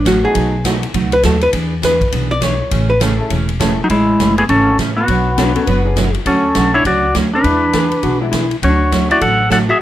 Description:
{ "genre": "country, western swing", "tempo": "203 BPM", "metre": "4/4", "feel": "swing 62% on 8ths", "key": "A major", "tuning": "A4 = 440 Hz", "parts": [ { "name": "archtop guitar, miked and amplified", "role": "second line", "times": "0.0-9.8 s", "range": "F#3 to D5", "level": "-18 LUFS", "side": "equal", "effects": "none" }, { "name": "picked steel-string acoustic guitar", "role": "accompaniment", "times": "0.0-9.6 s", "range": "B2 to C#5", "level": "-20 LUFS", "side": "right 5 dB", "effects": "none" }, { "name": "upright bass", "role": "bass", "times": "0.0-9.7 s", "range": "E1 to E2", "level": "-19 LUFS", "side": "left 1 dB", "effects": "none" }, { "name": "swinging big-band drum kit", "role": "drums", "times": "0.1-9.6 s", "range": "hi-hat, kick drum, ride cymbal, snare drum", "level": "-22 LUFS", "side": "left 1 dB", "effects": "none" }, { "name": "clear upright piano", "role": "accompaniment", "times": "0.2-0.8, 3.2-9.8 s", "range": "E3 to A4", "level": "-25 LUFS", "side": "left 2 dB", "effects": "none" }, { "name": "clean lap steel guitar", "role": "melody", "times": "3.8-9.8 s", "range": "G#3 to F#5", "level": "-14 LUFS", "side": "left 1 dB", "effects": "none" }, { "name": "clean lap steel guitar", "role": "second line", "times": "5.4-8.6 s", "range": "C#4 to B4", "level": "-20 LUFS", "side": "left 5 dB", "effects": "none" } ], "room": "moderate studio reverb, RT60 0.8 s", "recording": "none", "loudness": "-12 LUFS", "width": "side -13 dB against mid", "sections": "0.0-3.9 A section; 3.9-9.8 B section", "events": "hollow-body jazz guitar solo 0.0-3.9", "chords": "0.4 B7; 1.5 E7; 2.7 Amaj7; 5.1 Bmadd9; 6.3 Dmaj7; 7.4 E7; 8.6 Dmaj7" }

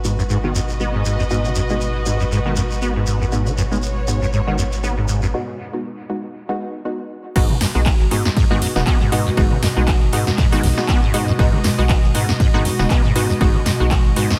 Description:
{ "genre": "acid house", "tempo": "119 BPM", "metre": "4/4", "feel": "swing 56% on 16ths", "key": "G# minor", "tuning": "A4 = 438 Hz", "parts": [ { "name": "warbly tape-like pad", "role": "sustained chords", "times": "0.0-14.4 s", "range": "B2 to F#4", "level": "-29 LUFS", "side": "equal", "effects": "chorus, built-in reverb, sidechain pumping" }, { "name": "acid bass, saw", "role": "riff", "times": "0.0-14.3 s", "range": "F#2 to B3", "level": "-24 LUFS", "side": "equal", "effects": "ensemble chorus, sidechain pumping, diffuse ambient delay" }, { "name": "filtered dub chord stab", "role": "stabs", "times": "0.0-14.3 s", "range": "G#3 to F#4", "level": "-27 LUFS", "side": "equal", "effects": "chorus, diffuse ambient delay" }, { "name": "saturated sub bass", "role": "bass", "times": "0.0-14.1 s", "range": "D#1 to G#2", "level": "-25 LUFS", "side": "equal", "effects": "sidechain pumping" }, { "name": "shekere", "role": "percussion", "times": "0.0-5.3 s", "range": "none", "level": "-34 LUFS", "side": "equal", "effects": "none" }, { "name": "muted studio string section", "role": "texture", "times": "0.0-14.4 s", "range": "F#4 to D#5", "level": "-32 LUFS", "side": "equal", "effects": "sidechain pumping" }, { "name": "electro analog drum machine", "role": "drums", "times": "7.4-14.4 s", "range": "crash cymbal, handclaps, hi-hat, ride cymbal, snare drum, toms", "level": "-26 LUFS", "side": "equal", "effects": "none" }, { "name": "electronic kick drum", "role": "drums", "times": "7.4-14.0 s", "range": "none", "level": "-19 LUFS", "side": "equal", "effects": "none" }, { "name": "vintage drum kit", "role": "drums", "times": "7.4-14.4 s", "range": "hi-hat, snare drum", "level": "-39 LUFS", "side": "equal", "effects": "none" } ], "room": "moderate lush hall reverb, RT60 2.0 s", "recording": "dreamy mix soaked in reverb", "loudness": "-18 LUFS", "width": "mono", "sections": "0.0-7.4 A section; 7.4-14.4 B section", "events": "filter sweep on acid bass 0.0-7.4; filter sweep on synth stab 0.0-7.4; break 5.3-7.4; drop 7.4-14.4", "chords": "0.0 G#m7" }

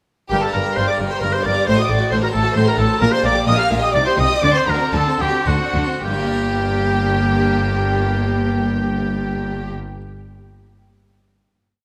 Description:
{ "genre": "classical, baroque-style concerto movement with solo episodes", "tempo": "104-134 BPM", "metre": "3/4", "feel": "straight", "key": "G minor", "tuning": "A4 = 440 Hz", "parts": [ { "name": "clear oboe", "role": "melody", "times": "0.3-9.7 s", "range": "F#4 to G5", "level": "-24 LUFS", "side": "equal", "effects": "none" }, { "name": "rich chamber violin section", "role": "melody", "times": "0.3-9.7 s", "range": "F#5 to F6", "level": "-30 LUFS", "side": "equal", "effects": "none" }, { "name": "rich chamber violin section", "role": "second line", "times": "0.3-9.7 s", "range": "F#4 to F5", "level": "-25 LUFS", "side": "equal", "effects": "none" }, { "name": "harpsichord", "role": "accompaniment", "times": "0.3-10.0 s", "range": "G2 to C5", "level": "-30 LUFS", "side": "equal", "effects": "none" }, { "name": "rich studio viola section", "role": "accompaniment", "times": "0.3-9.7 s", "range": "Bb3 to Bb4", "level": "-27 LUFS", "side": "equal", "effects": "none" }, { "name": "clear chamber double bass section", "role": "bass", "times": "0.3-9.7 s", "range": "G1 to D2", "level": "-26 LUFS", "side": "equal", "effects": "none" }, { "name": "rich chamber cello section", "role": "bass", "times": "0.3-9.7 s", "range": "G2 to D3", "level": "-26 LUFS", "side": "equal", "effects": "none" } ], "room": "moderate concert hall reverb, RT60 2.4 s", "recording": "none", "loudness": "-18 LUFS", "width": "mono", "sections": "0.3-6.0 ritornello; 6.0-9.5 final chord", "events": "slowing down 2.3-6.0", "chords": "0.3 Gm; 1.7 D7/A; 3.0 Gm/Bb; 3.9 Cm; 4.4 D7; 6.0 Gm" }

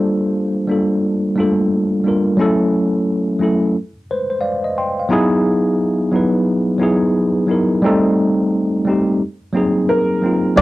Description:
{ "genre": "lo-fi hip hop", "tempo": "88 BPM", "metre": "4/4", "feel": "swing 62% on 16ths", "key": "unclear", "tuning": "A4 = 440 Hz", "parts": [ { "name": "mellow tine electric piano", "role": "accompaniment", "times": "0.0-10.6 s", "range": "F#3 to C6", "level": "-14 LUFS", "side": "equal", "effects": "medium stereo tremolo, cassette tape" }, { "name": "dark upright piano", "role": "melody", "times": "9.9-10.6 s", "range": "Bb4 to D5", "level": "-16 LUFS", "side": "equal", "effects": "none" }, { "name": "upright bass", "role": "bass", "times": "10.6 s", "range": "G1", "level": "-13 LUFS", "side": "equal", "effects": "none" } ], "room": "light reverb", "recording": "dry, gritty hardware recording, cassette tape", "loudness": "-14 LUFS", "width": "side -18 dB against mid", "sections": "0.0-10.6 A section", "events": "none", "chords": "0.0 Gm9; 2.4 F#m7; 3.7 N.C.; 5.1 Emaj9; 7.8 Am7b5; 9.2 Ab9" }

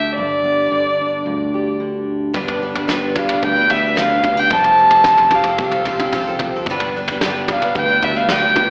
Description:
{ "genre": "indie folk with a building arrangement", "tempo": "111 BPM", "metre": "4/4", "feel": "straight", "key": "unclear", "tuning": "A4 = 437 Hz", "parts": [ { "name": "dark fiddle", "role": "melody", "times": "0.0-8.7 s", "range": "D5 to A5", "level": "-17 LUFS", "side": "equal", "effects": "none" }, { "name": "fingerpicked steel-string acoustic guitar", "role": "accompaniment", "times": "0.0-8.7 s", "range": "F2 to G4", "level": "-27 LUFS", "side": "equal", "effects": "slapback echo" }, { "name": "fingered electric bass", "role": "bass", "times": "0.0-8.7 s", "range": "F1 to D2", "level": "-31 LUFS", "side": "equal", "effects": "none" }, { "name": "picked twelve-string acoustic guitar", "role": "accompaniment", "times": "2.3-8.7 s", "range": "G2 to B4", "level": "-25 LUFS", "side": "equal", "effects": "slapback echo" }, { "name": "soft brush drum kit", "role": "drums", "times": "2.3-8.7 s", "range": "kick drum, snare drum, toms", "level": "-25 LUFS", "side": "equal", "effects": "slapback echo" } ], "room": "light reverb, studio ambience", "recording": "live gig heard through the venue's PA, recital hall reverb, AM radio sound", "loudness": "-17 LUFS", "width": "mono", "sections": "0.0-2.3 A section; 2.3-8.7 B section", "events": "none", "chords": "0.0 G; 4.5 Fadd9; 6.7 G" }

